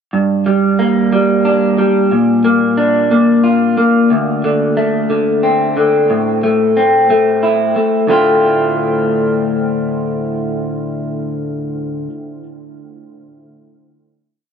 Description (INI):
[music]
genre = post-rock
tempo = 60 BPM (dotted quarters)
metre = 6/8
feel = straight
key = D minor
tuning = A4 = 440 Hz
[part]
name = electric guitar through a small old amp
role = solo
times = 0.1-12.1 s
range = D2 to F4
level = -12 LUFS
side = equal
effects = lush chorus, digital delay
[sound]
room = moderate huge ambient reverb, RT60 6.3 s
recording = none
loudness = -12 LUFS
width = side -7 dB against mid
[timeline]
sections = 0.1-8.1 A section; 8.1-12.1 final chord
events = none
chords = 0.1 Gm; 2.1 Bb; 4.1 D5; 6.1 Am; 8.1 Dm7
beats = | 0.14 1.13 | 2.12 3.12 | 4.11 5.11 | 6.10 7.09 | 8.09 9.08 | 10.07 11.06